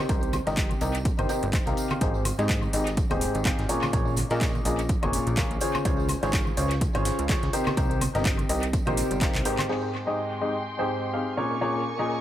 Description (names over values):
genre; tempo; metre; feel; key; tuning
piano house; 125 BPM; 4/4; swing 57% on 16ths; Ab major; A4 = 440 Hz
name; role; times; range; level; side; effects
clear grand piano; riff; 0.0-12.2 s; Ab2 to F5; -27 LUFS; left 1 dB; sidechain pumping, low-pass filter, analog delay
plucky analog bass; bass; 0.1-9.4 s; Eb1 to Bb2; -29 LUFS; equal; tube saturation, sidechain pumping
dusty soul sampler-style drum kit; drums; 0.1-9.6 s; hi-hat, snare drum; -42 LUFS; left 1 dB; none
electronic kick drum; drums; 0.1-9.3 s; none; -28 LUFS; equal; overdrive
house drum kit; drums; 0.1-9.8 s; crash cymbal, handclaps, hi-hat, woodblock; -32 LUFS; left 1 dB; overdrive, low-pass filter on perc, low-pass filter on hats, low-pass filter on snare, low-pass filter on cymbals, low-pass filter on room, analog delay
tambourine and congas; percussion; 0.1-9.7 s; none; -37 LUFS; right 2 dB; analog delay
dark studio violin section; sustained chords; 9.7-12.2 s; Ab3 to Db6; -34 LUFS; right 1 dB; sidechain pumping, low-pass filter
room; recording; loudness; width
light reverb; echo-heavy mix; -23 LUFS; side -12 dB against mid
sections
0.0-9.7 A section; 9.7-12.2 B section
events
drum fill 9.3-9.7; filter sweep on grand piano 9.7-12.2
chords
0.0 Cm7; 2.0 Abmaj7; 3.7 Bbm7; 5.6 Dbmaj7; 7.5 Cm7; 9.7 Abmaj7; 11.4 Bbm7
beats
| 0.09 0.57 1.05 1.53 | 2.01 2.49 2.97 3.45 | 3.93 4.41 4.89 5.37 | 5.85 6.33 6.81 7.29 | 7.77 8.25 8.73 9.21 | 9.69 10.17 10.65 11.13 | 11.61 12.09